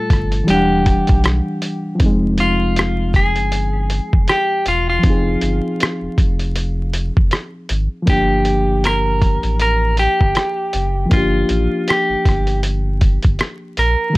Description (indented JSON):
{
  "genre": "lo-fi hip hop",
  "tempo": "79 BPM",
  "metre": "4/4",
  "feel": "swing 56% on 16ths",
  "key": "F dorian",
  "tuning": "A4 = 439 Hz",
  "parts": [
    { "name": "clean electric guitar", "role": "melody", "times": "0.0-14.2 s", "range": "F4 to Bb4", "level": "-19 LUFS", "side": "equal", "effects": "none" },
    { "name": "reed electric piano", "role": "accompaniment", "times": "0.0-14.2 s", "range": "Bb2 to F#5", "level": "-21 LUFS", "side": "left 1 dB", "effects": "none" },
    { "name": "sub bass with octave", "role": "bass", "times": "0.1-14.0 s", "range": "E1 to B1", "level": "-19 LUFS", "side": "equal", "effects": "transformer saturation" },
    { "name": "lo-fi sampler-style drum kit", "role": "drums", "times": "0.1-14.2 s", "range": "hi-hat, kick drum, rim click", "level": "-16 LUFS", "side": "equal", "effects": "none" }
  ],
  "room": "little or no reverb",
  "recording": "dry, gritty hardware recording, vinyl crackle",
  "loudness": "-14 LUFS",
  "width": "side -20 dB against mid",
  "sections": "0.0-2.0 A section; 2.0-14.2 B section",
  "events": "none",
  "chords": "0.5 Em9; 2.0 Fm7; 8.1 Gm7",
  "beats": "0.48 1.24 | 2.00 2.76 3.52 4.28 | 5.04 5.80 6.56 7.32 | 8.08 8.84 9.60 10.35 | 11.11 11.87 12.63 13.39 | 14.15"
}